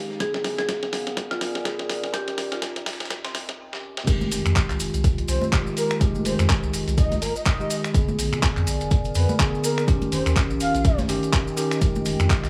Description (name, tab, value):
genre	deep house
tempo	124 BPM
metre	4/4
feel	swing 58% on 16ths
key	F minor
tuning	A4 = 442 Hz
part	marimba with medium hard mallets	melody	0.0-3.6 s	C4 to Ab4	-35 LUFS	equal	digital delay
part	bell-like tine electric piano	stabs	0.0-12.5 s	D3 to Ab4	-30 LUFS	equal	sidechain pumping
part	warbly tape-like pad	texture	0.0-12.5 s	Ab3 to Ab5	-38 LUFS	equal	chorus, built-in reverb, sidechain pumping
part	dusty soul sampler-style drum kit	drums	0.1-12.4 s	hi-hat, snare drum	-41 LUFS	equal	none
part	round analog bass	bass	0.2-12.5 s	Eb1 to Bb2	-28 LUFS	equal	sidechain pumping, high-pass filter
part	dusty soul sampler-style drum kit	drums	0.2-12.5 s	crash cymbal, finger snaps, handclaps, hi-hat, snare drum	-31 LUFS	equal	none
part	electronic kick drum	drums	0.2-12.4 s	none	-24 LUFS	equal	overdrive
part	maracas	percussion	4.1-12.5 s	none	-38 LUFS	equal	none
part	congas	percussion	4.2-12.2 s	none	-34 LUFS	equal	none
part	breathy flute-like synth lead	melody	5.3-11.0 s	Bb4 to F5	-31 LUFS	equal	ensemble chorus, vintage 12-bit sampler grit, dub echo
room	little or no reverb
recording	high-pass filter, small room ambience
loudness	-23 LUFS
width	mono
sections	0.0-4.1 A section; 4.1-12.5 B section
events	build-up 0.0-4.1; drum fill 0.0-3.6, 3.7-4.1; filter sweep on tine electric piano 0.0-4.1; filter sweep 0.0-4.1; break 3.6-4.1; drop 4.1-12.5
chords	0.2 Bb7b9; 2.1 Eb7; 4.1 Fm9; 7.9 Bb7b9; 9.9 Eb7; 11.8 Fm9